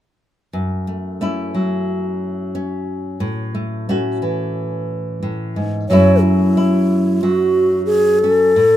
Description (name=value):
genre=folk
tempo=90 BPM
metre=4/4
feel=straight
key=unclear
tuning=A4 = 443 Hz
part: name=nylon-string guitar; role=accompaniment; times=0.5-8.8 s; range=F#2 to F#4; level=-18 LUFS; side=left 1 dB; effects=none
part: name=breathy bright round clay ocarina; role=melody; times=5.9-8.8 s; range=E4 to C#5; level=-14 LUFS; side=equal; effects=none
room=moderate booth ambience, RT60 0.2 s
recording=minimal, uncompressed stereo recording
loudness=-16 LUFS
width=side -11 dB against mid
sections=0.5-5.9 A section; 5.9-8.8 B section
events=none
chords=0.5 F#m7; 3.2 A6; 5.9 F#m7